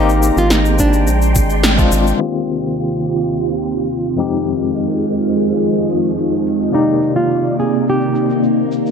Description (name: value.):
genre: sunset chillout.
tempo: 106 BPM.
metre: 4/4.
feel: straight.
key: Eb major.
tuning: A4 = 439 Hz.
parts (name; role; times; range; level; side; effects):
nylon-string guitar; melody; 0.0-1.6, 6.7-8.4 s; D4 to Ab4; -19 LUFS; equal; tape echo.
overdriven tine electric piano; accompaniment; 0.0-8.9 s; F2 to D5; -20 LUFS; moving between left 7 dB and right 6 dB; fast tremolo, auto-pan, tape echo.
soft string machine; sustained chords; 0.0-8.9 s; Eb2 to C6; -17 LUFS; right 1 dB; phaser, ensemble chorus.
round analog bass; bass; 0.0-2.1 s; Ab1 to Bb1; -16 LUFS; equal; none.
electronic shaker and snare drum; drums; 0.1-8.9 s; none; -20 LUFS; equal; overdrive.
electronic kick drum; drums; 0.8-1.9 s; none; -18 LUFS; equal; overdrive.
room: light reverb.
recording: low-pass filter.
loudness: -13 LUFS.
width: side -6 dB against mid.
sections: 0.0-2.2 A section; 2.2-8.9 B section.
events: band accent 1.6; filter sweep 2.2-8.9.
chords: 0.0 Abmaj9; 1.1 Bb13; 2.2 Eb69; 4.2 Fm7; 6.7 Cm9.